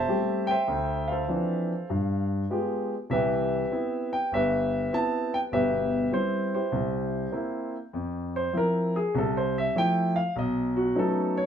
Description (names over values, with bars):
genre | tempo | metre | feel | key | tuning
solo jazz | 99 BPM | 4/4 | swing 67% on 8ths | C major | A4 = 440 Hz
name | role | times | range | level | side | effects
warm concert grand piano | solo | 0.0-11.5 s | G1 to A5 | -24 LUFS | equal | none
room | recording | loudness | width
wet studio ambience, RT60 0.5 s | band playing live in one room | -25 LUFS | side -8 dB against mid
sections
0.0-7.9 A section; 7.9-11.5 B section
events
grand piano solo 7.9-11.5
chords
0.0 Am7; 0.7 Dm9; 1.9 G7b9; 3.1 Cmaj7; 6.7 C7; 7.9 Fmaj7; 10.4 B9